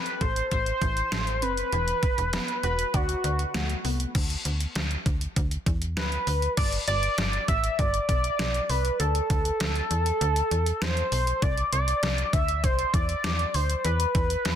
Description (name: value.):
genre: synth-pop.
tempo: 99 BPM.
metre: 4/4.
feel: straight.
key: G major.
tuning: A4 = 439 Hz.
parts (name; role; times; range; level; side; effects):
octave-doubled lead; melody; 0.0-14.6 s; F#4 to E5; -27 LUFS; equal; chorus, ping-pong delay.
wide unison pluck; arpeggios; 0.0-4.0 s; D3 to E5; -37 LUFS; equal; phaser, ping-pong delay.
detuned 8-bit digital drum machine; drums; 0.1-14.6 s; crash cymbal, hi-hat, kick drum, snare drum; -28 LUFS; equal; none.
slap-like FM bass; bass; 0.2-14.6 s; E1 to E2; -28 LUFS; equal; none.
room: light reverb.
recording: dense, heavily limited modern master.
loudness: -23 LUFS.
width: side -9 dB against mid.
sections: 0.0-4.1 A section; 4.1-6.6 B section; 6.6-14.6 C section.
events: none.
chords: 0.0 Am; 1.7 Esus2; 2.9 D6; 4.1 Bmadd11/D; 6.6 G; 9.0 Dsus2; 11.4 Cadd9; 13.8 E5.